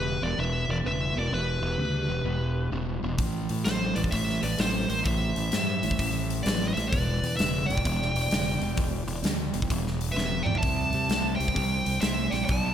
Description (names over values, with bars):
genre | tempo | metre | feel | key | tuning
blues rock power trio and southern rock | 129 BPM | 4/4 | swing 65% on 8ths | E minor | A4 = 441 Hz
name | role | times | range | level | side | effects
dark smooth lead guitar | melody | 0.0-12.7 s | B4 to A5 | -30 LUFS | equal | overdrive
lightly driven lead guitar | second line | 0.0-12.7 s | G4 to E5 | -39 LUFS | right 4 dB | slapback echo, digital delay
fuzz guitar | riff | 0.0-12.7 s | E2 to A3 | -31 LUFS | equal | distortion
fuzz fingered electric bass | bass | 0.0-12.7 s | E1 to C3 | -31 LUFS | equal | overdrive
big rock drum kit | drums | 3.2-12.6 s | hi-hat, kick drum, snare drum, toms | -29 LUFS | equal | none
room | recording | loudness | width
moderate lush hall reverb, RT60 1.7 s, studio reverb | big arena sound | -24 LUFS | side -9 dB against mid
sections
0.0-12.7 A section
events
drum fill 10.2-10.6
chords
0.0 Em; 3.2 Am; 6.9 Em7; 10.6 C